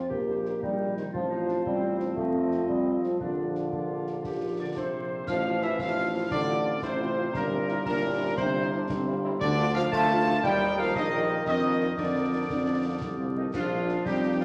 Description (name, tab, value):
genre	military-style march for wind band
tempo	116 BPM (dotted quarters)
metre	6/8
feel	straight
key	Bb major, F major from 5.3 s, Bb major from 9.4 s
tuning	A4 = 441 Hz
part	clear woodwind section	second line	0.0-14.4 s	C4 to A5	-38 LUFS	equal	none
part	warm euphonium	second line	0.0-14.4 s	Bb2 to C4	-33 LUFS	equal	none
part	warm tuba	bass	0.1-14.4 s	G1 to F2	-33 LUFS	equal	none
part	concert bass drum, concert snare drum and clash cymbals	drums	0.1-14.4 s	none	-42 LUFS	equal	none
part	bright trumpet section	melody	0.3-14.4 s	Eb4 to A5	-37 LUFS	equal	none
part	mellow French horn section	accompaniment	0.3-14.4 s	F3 to Bb4	-37 LUFS	equal	none
part	bright small flute group	second line	4.6-14.4 s	Bb4 to A5	-38 LUFS	equal	none
part	glockenspiel with soft plastic mallets	second line	4.6-13.3 s	Bb5 to A6	-41 LUFS	equal	none
part	clear trombone section	sustained chords	5.8-14.4 s	Bb3 to F4	-39 LUFS	equal	none
room	wet recital hall reverb, RT60 1.6 s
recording	vinyl crackle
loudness	-28 LUFS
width	mono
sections	0.0-5.3 A section; 5.3-13.5 B section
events	none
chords	0.1 Cm7/Bb; 1.1 F/A; 2.2 F7; 3.2 Bb; 5.3 F/A; 7.3 C7/G; 9.4 Bb/D; 10.4 Eb; 11.5 Bb/F; 12.5 F; 13.5 Bb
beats	| 0.10 0.62 | 1.14 1.66 | 2.18 2.69 | 3.21 3.73 | 4.25 4.76 | 5.28 5.79 | 6.31 6.83 | 7.34 7.86 | 8.38 8.89 | 9.41 9.92 | 10.44 10.96 | 11.47 11.99 | 12.50 13.02 | 13.54 14.05